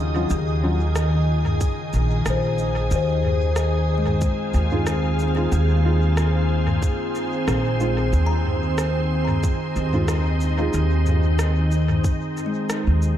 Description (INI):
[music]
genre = ambient dub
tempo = 92 BPM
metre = 4/4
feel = swing 53% on 16ths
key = unclear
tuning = A4 = 439 Hz
[part]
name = soft additive organ-like pad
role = sustained chords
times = 0.0-13.2 s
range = Db3 to Eb5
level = -25 LUFS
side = equal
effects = ensemble chorus, built-in reverb
[part]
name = upright bass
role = bass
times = 0.0-13.2 s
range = Bb1 to Eb2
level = -20 LUFS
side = equal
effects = none
[part]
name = dark upright piano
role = stabs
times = 0.2-0.8, 4.7-10.7 s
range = Gb3 to F4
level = -29 LUFS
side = equal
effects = wide subtle chorus, dub echo
[part]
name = organic electronic drum kit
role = drums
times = 0.3-13.2 s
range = rim click, shaker, toms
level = -30 LUFS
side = equal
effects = dub echo
[part]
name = electronic kick drum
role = drums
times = 1.6-12.2 s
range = none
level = -22 LUFS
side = equal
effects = none
[part]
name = kalimba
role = arpeggios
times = 2.3-13.2 s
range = Ab3 to Bb5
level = -30 LUFS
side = left 4 dB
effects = tape echo
[sound]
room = light reverb, digital ambience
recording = none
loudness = -19 LUFS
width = side -11 dB against mid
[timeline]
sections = 0.0-13.2 A section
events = none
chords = 0.0 Eb7sus2; 2.9 Fm7